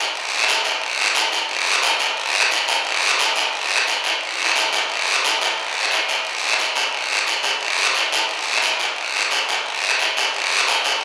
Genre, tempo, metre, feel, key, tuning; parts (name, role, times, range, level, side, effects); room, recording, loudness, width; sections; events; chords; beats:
latin; 177 BPM; 4/4; straight
guiro; percussion; 0.2-11.0 s; -19 LUFS; equal
wet recital hall reverb, RT60 1.4 s; recorded in a church or concert hall; -19 LUFS; mono
0.0-3.5 A section; 3.5-11.0 B section
0.15 0.49 | 0.82 1.16 1.50 1.84 | 2.18 2.52 2.86 3.20 | 3.54 3.88 4.21 4.55 | 4.89 5.23 5.57 5.91 | 6.25 6.59 6.93 7.27 | 7.61 7.95 8.29 8.63 | 8.97 9.31 9.65 9.99 | 10.33 10.67 11.01